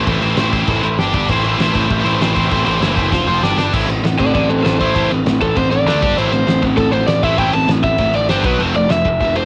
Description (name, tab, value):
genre	punk rock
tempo	197 BPM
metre	4/4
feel	straight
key	A minor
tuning	A4 = 441 Hz
part	distorted electric guitar	riff	0.0-9.4 s	A2 to D5	-19 LUFS	equal	overdrive, cassette tape
part	fuzz picked electric bass	bass	0.0-9.4 s	F1 to D2	-22 LUFS	equal	overdrive
part	loose indie drum kit	drums	0.1-9.4 s	crash cymbal, kick drum, snare drum	-23 LUFS	equal	cassette tape
part	overdriven electric guitar	melody	4.2-9.4 s	A4 to A5	-20 LUFS	equal	cassette tape
room	little or no reverb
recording	home recording on cassette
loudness	-15 LUFS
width	mono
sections	0.0-3.7 A section; 3.7-9.4 B section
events	drum fill 3.1-3.7; overdriven electric guitar solo 3.7-9.4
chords	0.0 Am; 1.0 G5; 1.3 Am; 3.1 F5; 3.4 G5; 3.7 Am; 5.9 D5; 6.0 G5; 6.2 Am; 8.3 G5; 8.4 B5; 8.6 F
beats	| 0.07 0.38 0.68 0.99 | 1.29 1.60 1.90 2.21 | 2.51 2.82 3.12 3.42 | 3.73 4.04 4.34 4.64 | 4.95 5.25 5.56 5.86 | 6.17 6.47 6.77 7.08 | 7.38 7.68 7.99 8.29 | 8.59 8.90 9.20